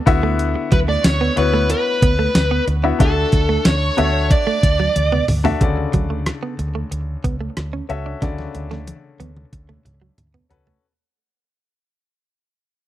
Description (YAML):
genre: 1980s-style pop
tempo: 92 BPM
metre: 4/4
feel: straight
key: D major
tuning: A4 = 440 Hz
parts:
  - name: clear baby grand piano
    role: accompaniment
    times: 0.0-10.8 s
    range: C#3 to E5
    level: -23 LUFS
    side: left 6 dB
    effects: none
  - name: direct-recorded clean electric guitar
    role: riff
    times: 0.1-10.8 s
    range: F#3 to D4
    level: -25 LUFS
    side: right 6 dB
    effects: wide subtle chorus
  - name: vintage muted fingered electric bass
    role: bass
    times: 0.1-10.7 s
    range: C#2 to D2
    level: -21 LUFS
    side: equal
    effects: none
  - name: clean 12-bit digital drum machine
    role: drums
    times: 0.1-10.8 s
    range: hi-hat, kick drum, rim click, snare drum, tambourine, toms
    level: -18 LUFS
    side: equal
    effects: overdrive
  - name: dark smooth lead guitar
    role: melody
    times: 0.7-5.2 s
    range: A4 to D5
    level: -20 LUFS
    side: right 1 dB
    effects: overdrive
  - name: bright studio violin section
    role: second line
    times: 0.7-5.2 s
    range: A5 to D6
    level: -31 LUFS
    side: right 1 dB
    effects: tape echo
room: little or no reverb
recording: dry, close 1970s-style studio recording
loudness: -16 LUFS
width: side -13 dB against mid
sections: 0.0-5.6 A section; 5.6-10.8 B section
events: drum fill 5.0-5.6, 8.2-10.8; fade-out 5.6-10.8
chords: 0.1 Esus2/D; 3.0 Dadd9; 5.6 Dmaj7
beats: | 0.39 1.05 1.70 2.35 | 3.00 3.65 4.31 4.96 | 5.61 6.26 6.92 7.57 | 8.22 8.87 9.53 10.18